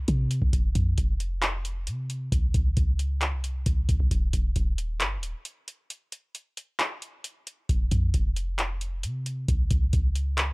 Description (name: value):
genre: hip hop, trap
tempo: 134 BPM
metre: 4/4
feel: half-time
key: unclear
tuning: A4 = 440 Hz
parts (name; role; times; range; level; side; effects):
- clean 808-style bass; bass; 0.0-10.5 s; Eb1 to C3; -26 LUFS; equal; none
- booming analog drum machine; drums; 0.1-10.5 s; handclaps, hi-hat, kick drum; -26 LUFS; equal; none
room: little or no reverb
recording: dry, gritty hardware recording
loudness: -24 LUFS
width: side -27 dB against mid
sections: 0.0-7.7 A section; 7.7-10.5 A section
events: break 5.9-7.7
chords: none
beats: 0.08 | 0.53 0.98 1.43 1.87 | 2.32 2.77 3.22 3.66 | 4.11 4.56 5.01 5.46 | 5.90 6.35 6.80 7.25 | 7.69 8.14 8.59 9.04 | 9.48 9.93 10.38